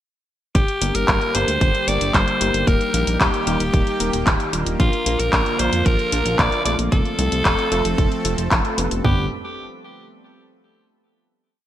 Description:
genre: italo disco.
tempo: 113 BPM.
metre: 4/4.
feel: straight.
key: G minor.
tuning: A4 = 440 Hz.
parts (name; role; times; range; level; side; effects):
raspy alto saxophone; melody; 0.6-9.3 s; F4 to D5; -23 LUFS; equal; digital delay.
lush unison pad; sustained chords; 1.2-9.3 s; D3 to A4; -28 LUFS; right 2 dB; chorus.
chorused synth bass; bass; 0.6-9.3 s; Eb1 to F2; -23 LUFS; equal; none.
house drum kit; drums; 0.6-9.2 s; kick drum, toms; -20 LUFS; equal; none.
house drum kit; drums; 0.6-9.0 s; handclaps, hi-hat; -22 LUFS; equal; gated reverb.
bright tine electric piano; stabs; 0.8-9.2 s; A3 to B4; -27 LUFS; left 3 dB; analog chorus.
room: light reverb.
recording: bright 1980s-style digital production.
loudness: -17 LUFS.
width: side -12 dB against mid.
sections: 0.6-9.0 chorus; 9.0-11.2 final chord.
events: none.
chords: 0.6 Gm; 2.7 Eb; 4.8 Bb; 6.9 F; 9.0 G.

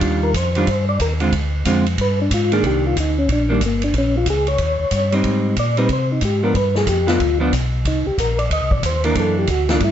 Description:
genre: soul jazz organ trio.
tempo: 184 BPM.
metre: 4/4.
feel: swing 63% on 8ths.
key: unclear.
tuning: A4 = 440 Hz.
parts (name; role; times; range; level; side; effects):
vintage hollow-body jazz guitar; accompaniment; 0.0-9.8 s; D3 to F4; -20 LUFS; right 2 dB; none.
mellow tonewheel organ; bass; 0.0-9.9 s; G1 to C3; -20 LUFS; equal; chorus vibrato, slow rotary speaker.
swinging big-band drum kit; drums; 0.0-9.9 s; hi-hat, kick drum, ride cymbal, snare drum; -24 LUFS; equal; none.
percussive tonewheel organ; melody; 0.2-9.9 s; G3 to Eb5; -20 LUFS; left 1 dB; slow rotary speaker, chorus vibrato, plate reverb.
room: light reverb.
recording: dark, warm production, nothing above 7.8 kHz.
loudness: -16 LUFS.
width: side -10 dB against mid.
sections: 0.0-2.6 A section; 2.6-9.9 A section.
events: tonewheel organ solo 0.0-9.9.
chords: 0.0 Ebmaj9; 1.3 Dm7b5; 2.0 G5; 2.6 Cm9; 3.9 Bbm; 4.6 Eb6; 5.2 Abmaj7; 6.5 G7; 7.8 Cm7; 9.2 Gb7alt.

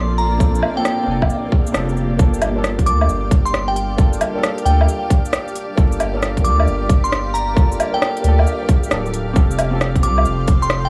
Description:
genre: future garage.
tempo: 134 BPM.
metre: 4/4.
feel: swing 66% on 16ths.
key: G minor.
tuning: A4 = 440 Hz.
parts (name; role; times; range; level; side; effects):
glassy synth bell; melody; 0.0-10.9 s; G5 to D6; -25 LUFS; equal; chorus, tape echo.
felt-muted upright piano; accompaniment; 0.0-10.9 s; Bb3 to A4; -28 LUFS; equal; sidechain pumping, tape echo.
granular cloud pad; sustained chords; 0.0-10.9 s; Bb3 to C6; -29 LUFS; equal; built-in reverb, sidechain pumping.
warm sub bass; bass; 0.0-10.9 s; D1 to D2; -21 LUFS; equal; sidechain pumping.
organic electronic drum kit; drums; 0.2-10.8 s; hi-hat, rim click, shaker, woodblock; -24 LUFS; equal; overdrive.
electronic kick drum; drums; 0.4-10.6 s; none; -16 LUFS; equal; overdrive.
room: little or no reverb.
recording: dry, gritty hardware recording, vinyl crackle, small room ambience.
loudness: -17 LUFS.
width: mono.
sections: 0.0-2.2 A section; 2.2-10.9 B section.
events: band accent 1.7.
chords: 0.0 Bbmaj7; 2.2 Gm7; 9.4 Fadd9.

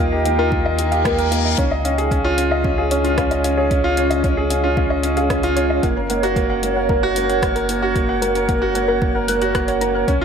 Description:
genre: piano and strings electronica.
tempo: 113 BPM.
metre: 4/4.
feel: straight.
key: unclear.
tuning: A4 = 445 Hz.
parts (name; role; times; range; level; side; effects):
granular cloud pad; sustained chords; 0.0-10.2 s; Db4 to G5; -24 LUFS; right 2 dB; built-in reverb, sidechain pumping.
soft round pluck; arpeggios; 0.0-10.1 s; Bb4 to Gb6; -26 LUFS; left 4 dB; chorus, sidechain pumping, ping-pong delay.
warm grand piano; riff; 0.0-10.2 s; Bb3 to Gb5; -19 LUFS; right 1 dB; ping-pong delay.
warm sub bass; bass; 0.0-10.2 s; Gb1 to Eb2; -24 LUFS; equal; sidechain pumping.
deep house drum kit; drums; 0.3-10.2 s; hi-hat, rim click; -28 LUFS; left 1 dB; overdrive.
electronic kick drum; drums; 0.5-10.2 s; none; -22 LUFS; equal; none.
reverse cymbal; sound effects; 0.9-1.6 s; none; -27 LUFS; left 7 dB; none.
room: light reverb, digital ambience.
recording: none.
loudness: -16 LUFS.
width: side -7 dB against mid.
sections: 0.0-10.2 A section.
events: reverse cymbal 0.9-1.6.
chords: 0.0 Ebadd9; 1.6 Dbadd9; 5.8 Gb.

